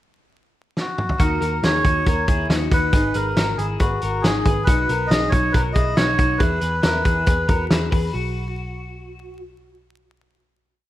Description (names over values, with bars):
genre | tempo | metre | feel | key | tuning
jangly indie pop | 138 BPM | 4/4 | straight | B major | A4 = 438 Hz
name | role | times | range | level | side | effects
melodica | melody | 0.8-7.7 s | F#4 to D#5 | -23 LUFS | right 1 dB | none
loose indie drum kit | drums | 0.8-8.0 s | hi-hat, kick drum, snare drum, toms | -20 LUFS | equal | none
twelve-string electric guitar | arpeggios | 1.2-9.4 s | D#4 to B4 | -25 LUFS | left 3 dB | tube saturation, analog delay
vintage muted picked electric bass | bass | 1.2-10.9 s | G#1 to E2 | -25 LUFS | equal | none
room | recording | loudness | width
moderate digital room reverb, RT60 0.9 s | rough home demo mix, vinyl crackle | -17 LUFS | side -14 dB against mid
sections
0.0-1.2 pickup bar; 1.2-8.1 verse; 8.1-10.9 final chord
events
drum fill 0.8-1.2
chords
0.0 N.C.; 1.2 D#m7; 2.9 G#m7; 4.7 B6; 6.4 E; 8.1 B5